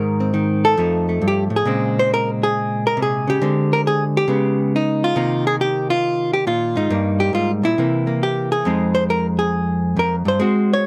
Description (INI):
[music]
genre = solo jazz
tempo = 137 BPM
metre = 4/4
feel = swing 67% on 8ths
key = unclear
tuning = A4 = 439 Hz
[part]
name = hollow-body jazz guitar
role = solo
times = 0.0-10.9 s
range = F2 to Db5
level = -19 LUFS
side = equal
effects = none
[sound]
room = light reverb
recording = none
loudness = -19 LUFS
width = mono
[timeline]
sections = 0.0-1.7 A section; 1.7-10.9 B section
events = none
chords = 0.0 Abadd9; 0.8 F7; 1.7 Bbm9; 3.4 Bb13/D (rootless); 4.3 Db5; 5.2 Cm7; 6.9 Fm11/G; 7.8 C7; 8.6 Fm7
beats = 0.34 0.78 1.22 | 1.66 2.10 2.53 2.97 | 3.41 3.84 4.28 4.72 | 5.15 5.59 6.03 6.46 | 6.90 7.34 7.78 8.21 | 8.65 9.09 9.52 9.96 | 10.40 10.84